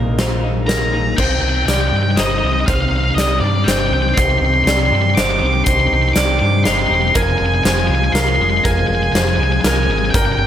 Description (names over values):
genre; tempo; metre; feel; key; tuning
post-rock; 120 BPM; 3/4; straight; unclear; A4 = 440 Hz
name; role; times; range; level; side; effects
pedal harmonium; sustained chords; 0.0-10.5 s; Eb3 to Bb4; -27 LUFS; left 1 dB; none
felt-muted upright piano; arpeggios; 0.0-10.5 s; Bb4 to D5; -25 LUFS; right 2 dB; digital delay
twelve-string electric guitar; arpeggios; 0.0-10.5 s; F2 to F4; -25 LUFS; left 2 dB; tremolo, digital delay
fingered electric bass; bass; 0.0-10.5 s; Fb1 to G2; -18 LUFS; equal; none
huge arena drum kit; drums; 0.2-10.3 s; crash cymbal, hi-hat, kick drum, snare drum; -19 LUFS; left 1 dB; none
octave-fuzz lead guitar; melody; 0.7-10.5 s; D5 to D6; -18 LUFS; equal; distortion, digital delay
room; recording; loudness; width
light reverb, small room ambience; none; -13 LUFS; side -10 dB against mid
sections
0.0-1.2 A section; 1.2-10.5 B section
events
none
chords
0.0 Bb7sus4; 1.2 Cmadd9; 7.2 Fm